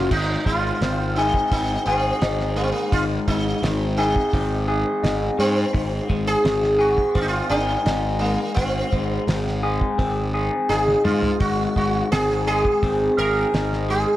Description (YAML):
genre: psychedelic rock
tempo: 85 BPM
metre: 4/4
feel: straight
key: Ab major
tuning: A4 = 436 Hz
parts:
  - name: sitar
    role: melody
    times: 0.0-14.2 s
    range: Bb3 to Bb4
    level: -23 LUFS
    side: right 1 dB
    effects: tape echo
  - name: electric guitar through a small old amp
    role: riff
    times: 0.0-14.2 s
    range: Gb2 to Ab4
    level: -23 LUFS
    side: left 2 dB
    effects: phaser
  - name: fuzz picked electric bass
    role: bass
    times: 0.0-14.0 s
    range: Ab1 to Ab2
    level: -25 LUFS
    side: right 1 dB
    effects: overdrive
  - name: cloth-damped thuddy drum kit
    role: drums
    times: 0.1-13.8 s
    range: crash cymbal, hi-hat, kick drum, snare drum, toms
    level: -24 LUFS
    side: right 1 dB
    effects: none
room: light reverb, small room ambience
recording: none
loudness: -19 LUFS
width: side -14 dB against mid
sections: 0.1-14.2 A section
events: drum fill 10.7-11.4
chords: 0.1 Ab